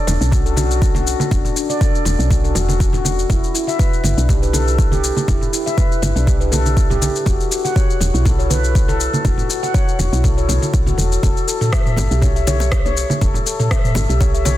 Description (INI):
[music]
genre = afro house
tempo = 121 BPM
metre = 4/4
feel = swing 54% on 16ths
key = E dorian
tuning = A4 = 444 Hz
[part]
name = handpan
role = arpeggios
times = 0.1-14.5 s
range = C#4 to F#5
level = -21 LUFS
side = left 2 dB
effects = vintage 12-bit sampler grit, sidechain pumping, low-pass filter, tape echo
[part]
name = woody FM bass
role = bass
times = 0.1-14.6 s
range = E1 to B1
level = -18 LUFS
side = equal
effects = sidechain pumping
[part]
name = afro-pop drum kit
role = drums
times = 0.1-14.6 s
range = rim click, shaker, toms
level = -24 LUFS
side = left 2 dB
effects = overdrive
[part]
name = congas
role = percussion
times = 0.1-14.6 s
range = none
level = -24 LUFS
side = right 2 dB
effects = none
[part]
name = electronic kick drum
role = drums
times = 0.3-14.3 s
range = none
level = -17 LUFS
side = equal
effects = overdrive
[part]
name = bongos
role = percussion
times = 12.0-14.6 s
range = none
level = -29 LUFS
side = left 3 dB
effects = none
[sound]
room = light reverb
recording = dense, heavily limited modern master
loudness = -14 LUFS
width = side -14 dB against mid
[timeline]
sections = 0.0-14.6 A section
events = filter sweep on handpan 0.0-14.6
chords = 0.0 D/E; 3.3 Em; 7.3 F#7(no3)/E; 11.2 A7/E